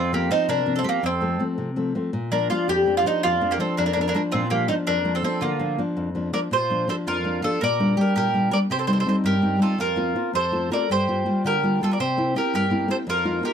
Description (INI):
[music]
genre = italian folk, Italian serenade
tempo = 110 BPM (dotted quarters)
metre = 6/8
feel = straight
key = Bb major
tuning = A4 = 440 Hz
[part]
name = mandolin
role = melody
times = 0.0-13.5 s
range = Bb3 to D5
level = -23 LUFS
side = equal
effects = none
[part]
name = mandolin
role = second line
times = 0.0-13.5 s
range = F4 to D5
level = -30 LUFS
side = right 5 dB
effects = none
[part]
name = nylon-string guitar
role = accompaniment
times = 0.0-13.5 s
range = F2 to F4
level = -24 LUFS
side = left 1 dB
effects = none
[sound]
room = small room ambience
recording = dry, close 1970s-style studio recording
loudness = -20 LUFS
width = side -8 dB against mid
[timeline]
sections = 0.0-6.5 A section; 6.5-13.5 B section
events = none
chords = 0.0 Fsus4; 1.0 F; 2.1 Bb; 7.6 Gm/Bb; 8.7 Cm; 9.8 Fsus4; 10.3 F; 10.9 Gm7; 12.0 C7